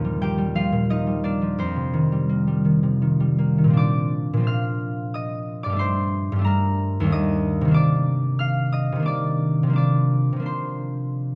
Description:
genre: classical, solo harp piece.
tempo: 75-97 BPM.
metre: 3/4.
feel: rubato.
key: Bb major.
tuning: A4 = 440 Hz.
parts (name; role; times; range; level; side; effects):
concert harp; solo; 0.0-11.4 s; Eb2 to F6; -22 LUFS; equal; none.
room: wet recital hall reverb, RT60 1.5 s.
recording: none.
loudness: -22 LUFS.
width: mono.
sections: 0.0-3.8 A section; 3.8-11.4 B section.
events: none.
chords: 0.0 Ebmaj9; 1.6 F9sus4; 3.8 Bbadd9; 5.8 Gmadd9; 7.8 Cm11.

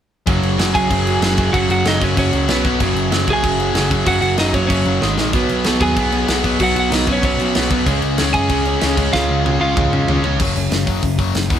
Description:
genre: punk rock.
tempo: 190 BPM.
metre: 4/4.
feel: straight.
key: unclear.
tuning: A4 = 440 Hz.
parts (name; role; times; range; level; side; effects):
crunchy overdriven guitar; riff; 0.3-11.6 s; E2 to C#4; -23 LUFS; left 1 dB; none.
distorted electric guitar; riff; 0.3-11.6 s; E2 to C#4; -23 LUFS; left 8 dB; overdrive.
overdriven electric guitar; riff; 0.3-10.4 s; F#2 to C#4; -21 LUFS; right 8 dB; none.
overdriven picked electric bass; bass; 0.3-11.6 s; E1 to F#2; -22 LUFS; equal; none.
tight metal drum kit; drums; 0.3-11.6 s; crash cymbal, hi-hat, kick drum, snare drum, toms; -21 LUFS; left 1 dB; none.
lightly driven lead guitar; melody; 0.7-10.2 s; C#4 to G#5; -20 LUFS; right 1 dB; none.
room: moderate studio reverb, RT60 0.6 s.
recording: band playing live in one room.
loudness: -14 LUFS.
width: side -9 dB against mid.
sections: 0.3-10.4 A section; 10.4-11.6 B section.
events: drum fill 5.0-5.3, 9.1-10.4.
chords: 0.3 F#5; 2.5 B5; 2.8 F#5; 5.0 G#5; 5.3 B5; 7.9 C#; 10.4 F#5.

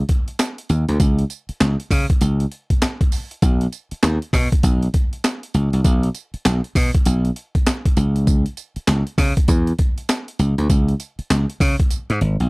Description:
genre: R&B, new jack swing.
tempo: 99 BPM.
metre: 4/4.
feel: swing 62% on 16ths.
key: unclear.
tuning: A4 = 440 Hz.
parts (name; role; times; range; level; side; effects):
breakbeat sampler-style drum kit; drums; 0.1-12.5 s; handclaps, hi-hat, kick drum, snare drum, tambourine; -18 LUFS; equal; none.
slap bass; bass; 0.7-12.5 s; G#1 to C#3; -17 LUFS; equal; none.
room: little or no reverb.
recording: dry, close 1970s-style studio recording.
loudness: -17 LUFS.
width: side -28 dB against mid.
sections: 0.0-12.5 A section.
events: break 11.9-12.5.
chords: none.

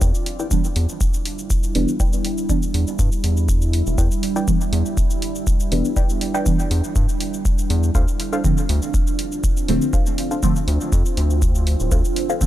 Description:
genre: dub techno.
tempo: 121 BPM.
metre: 4/4.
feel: straight.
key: E phrygian.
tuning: A4 = 440 Hz.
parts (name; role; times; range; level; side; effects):
deep dark ambient pad; sustained chords; 0.0-12.5 s; G3 to F4; -27 LUFS; right 3 dB; chorus, built-in reverb, sidechain pumping.
filtered dub chord stab; riff; 0.0-12.4 s; D4 to G5; -30 LUFS; left 1 dB; phaser, sidechain pumping, dub echo.
round analog bass; bass; 0.0-12.0 s; D1 to G2; -19 LUFS; equal; sidechain pumping.
electronic kick drum; drums; 0.0-12.5 s; none; -20 LUFS; equal; overdrive, studio reverb.
electronic shaker and hi-hat; drums; 0.0-12.5 s; none; -31 LUFS; left 1 dB; overdrive, studio reverb.
deep mellow chord stab; stabs; 0.5-12.5 s; D3 to D4; -25 LUFS; right 1 dB; chorus, phaser, sidechain pumping, dub echo.
room: little or no reverb.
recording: none.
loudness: -17 LUFS.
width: side -14 dB against mid.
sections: 0.0-12.5 A section.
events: none.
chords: 0.0 Em7; 7.9 Dm7.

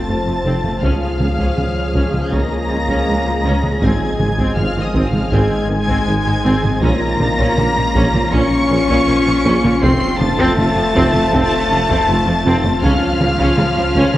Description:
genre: cinematic, hybrid orchestral and electronic film score.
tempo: 80 BPM.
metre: 4/4.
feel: straight.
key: Bb minor.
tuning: A4 = 441 Hz.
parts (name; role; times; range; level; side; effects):
warm symphonic violin section; melody; 0.0-14.2 s; Eb6 to Db7; -25 LUFS; left 1 dB; none.
rich symphonic violin section; second line; 0.0-14.2 s; Eb5 to Db6; -23 LUFS; left 2 dB; none.
rich symphonic viola section; accompaniment; 0.0-14.2 s; Eb3 to Ab4; -22 LUFS; equal; none.
deep dark ambient pad; sustained chords; 0.0-14.2 s; Eb3 to F5; -25 LUFS; equal; chorus, built-in reverb.
warm French horn section; sustained chords; 0.0-14.2 s; Eb3 to Db4; -22 LUFS; left 2 dB; none.
pure sine sub bass; bass; 0.0-14.2 s; F1 to Db2; -25 LUFS; equal; none.
mellow tuba; bass; 0.1-14.0 s; F1 to Db2; -23 LUFS; right 1 dB; none.
rich symphonic cello section; bass; 0.1-14.2 s; Db2 to Db3; -23 LUFS; right 1 dB; none.
warm symphonic double bass section; bass; 0.1-14.0 s; F1 to Db2; -24 LUFS; right 1 dB; none.
solo taiko drums; drums; 0.6-14.2 s; none; -22 LUFS; equal; none.
room: wet concert hall reverb, RT60 2.6 s.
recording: worn, warbling old tape, cassette tape, warbly pitch drift.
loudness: -13 LUFS.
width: side -14 dB against mid.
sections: 0.0-14.2 A section.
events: none.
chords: 0.0 F; 0.8 Db; 3.8 Ab; 6.8 Bbm; 9.8 F; 12.8 Db.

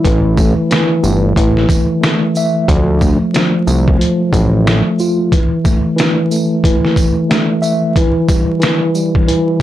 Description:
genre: hip hop, boom-bap hip-hop.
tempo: 91 BPM.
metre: 4/4.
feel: swing 62% on 16ths.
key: unclear.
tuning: A4 = 440 Hz.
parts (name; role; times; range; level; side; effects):
mellow tine electric piano; accompaniment; 0.0-9.6 s; E3 to E5; -14 LUFS; equal; fast stereo tremolo.
fat analog bass; bass; 0.0-4.8 s; G1 to D2; -13 LUFS; equal; transformer saturation.
trip hop sampler-style drum kit; drums; 0.0-9.6 s; hi-hat, kick drum, shaker, snare drum; -14 LUFS; equal; none.
tambourine; percussion; 0.4-9.1 s; none; -29 LUFS; right 4 dB; none.
room: light reverb.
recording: blown-out, overdriven recording, vinyl crackle, overdrive.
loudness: -11 LUFS.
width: side -13 dB against mid.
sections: 0.0-9.6 A section.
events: none.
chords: 0.0 A5; 2.7 Dm7; 5.3 A5; 8.0 Em.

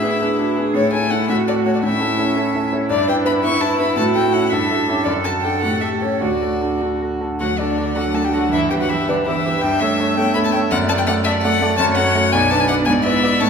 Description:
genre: quick classical-period movement for piano quartet.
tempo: 110 BPM (dotted quarters).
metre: 6/8.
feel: rubato.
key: D major.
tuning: A4 = 440 Hz.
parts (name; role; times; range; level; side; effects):
warm violin; melody; 0.0-13.5 s; C#5 to C#6; -21 LUFS; left 4 dB; none.
rich cello; second line; 0.0-13.5 s; D3 to A4; -24 LUFS; right 6 dB; none.
warm violin; second line; 0.0-13.5 s; C#4 to E5; -25 LUFS; left 2 dB; none.
bright concert grand piano; accompaniment; 0.0-13.5 s; B1 to D5; -19 LUFS; right 1 dB; none.
room: wet recital hall reverb, RT60 1.4 s.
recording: recorded in a church or concert hall.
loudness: -16 LUFS.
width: side -6 dB against mid.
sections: 0.0-7.4 A section; 7.4-13.5 B section.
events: none.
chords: 0.0 E7; 0.7 A5; 1.8 A; 2.9 Em7/G; 4.0 A; 4.5 A7/G; 5.1 D/F#; 5.6 A7; 6.2 D; 8.5 Em/G; 9.6 A7/G; 10.7 D/F#; 11.8 F#m; 12.3 Bm; 12.9 E7/G#.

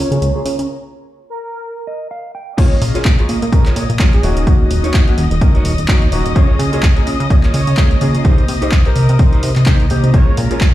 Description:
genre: filtered disco house.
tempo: 127 BPM.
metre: 4/4.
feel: swing 57% on 16ths.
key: Bb minor.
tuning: A4 = 440 Hz.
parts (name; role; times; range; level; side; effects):
analog synth brass; melody; 0.0-10.4 s; Ab4 to Db5; -28 LUFS; equal; chorus, sidechain pumping, low-pass filter, ping-pong delay.
muted studio string section; sustained chords; 0.0-10.7 s; Bb4 to Eb6; -27 LUFS; left 4 dB; vintage 12-bit sampler grit, sidechain pumping, low-pass filter.
mellow electric guitar; riff; 0.0-10.6 s; Eb4 to G5; -27 LUFS; right 4 dB; sidechain pumping, low-pass filter.
plucky analog bass; bass; 0.0-10.7 s; Eb1 to Db3; -16 LUFS; equal; sidechain pumping, low-pass filter.
bright grand piano; accompaniment; 0.1-10.7 s; Ab3 to Db5; -22 LUFS; left 1 dB; phaser, sidechain pumping, low-pass filter.
punchy analog drum machine; drums; 0.1-10.7 s; crash cymbal, handclaps, hi-hat; -24 LUFS; equal; sidechain pumping on hats, sidechain pumping on cymbals.
electronic kick drum; drums; 2.6-10.7 s; none; -12 LUFS; equal; none.
room: little or no reverb.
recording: played on a big sound system in a bare room, large studio reverb.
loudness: -11 LUFS.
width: side -14 dB against mid.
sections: 0.0-2.6 A section; 2.6-10.7 B section.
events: filter sweep 0.0-2.6; break 0.7-2.6; clean electric guitar fill 1.6-2.6; drop 2.6-10.7.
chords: 0.0 Db6; 0.7 N.C.; 2.6 Bbm7; 4.2 Ebm7; 6.4 Db6; 8.3 Cm7; 10.1 Bbm7.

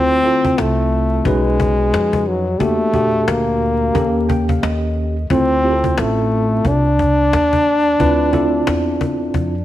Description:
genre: hip hop, jazz-hop.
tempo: 89 BPM.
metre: 4/4.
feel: swing 59% on 16ths.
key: unclear.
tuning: A4 = 441 Hz.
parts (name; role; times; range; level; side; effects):
clear trombone; melody; 0.0-9.6 s; F#3 to D4; -16 LUFS; left 1 dB; none.
tine electric piano; accompaniment; 0.0-9.5 s; Bb2 to G5; -21 LUFS; right 1 dB; overdrive, fast stereo tremolo.
upright bass; bass; 0.0-9.6 s; A1 to F2; -21 LUFS; equal; none.
cajon; drums; 0.2-9.5 s; none; -22 LUFS; left 2 dB; none.
room: light reverb.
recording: 1960s-style stereo, vinyl crackle.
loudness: -14 LUFS.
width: side -13 dB against mid.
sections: 0.0-9.6 A section.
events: tine electric piano fill 4.0-5.3.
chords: 0.0 Dm7; 1.3 B; 2.6 Em7b5; 4.0 Eb7#11; 5.3 Dm7.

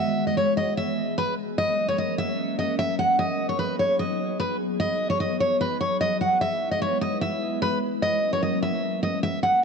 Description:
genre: hip hop.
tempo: 149 BPM.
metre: 4/4.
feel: half-time.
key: unclear.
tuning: A4 = 440 Hz.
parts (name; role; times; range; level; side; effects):
picked steel-string acoustic guitar; melody; 0.0-9.6 s; B4 to F#5; -23 LUFS; equal; low-pass filter, tape echo.
glassy FM pad; sustained chords; 0.0-9.6 s; E3 to B4; -28 LUFS; left 1 dB; ensemble chorus, built-in reverb.
room: light reverb, small room ambience.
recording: none.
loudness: -22 LUFS.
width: side -5 dB against mid.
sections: 0.0-9.6 A section.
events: none.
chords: 0.0 E; 1.6 F#; 3.2 G#m7; 6.4 E; 8.0 F#.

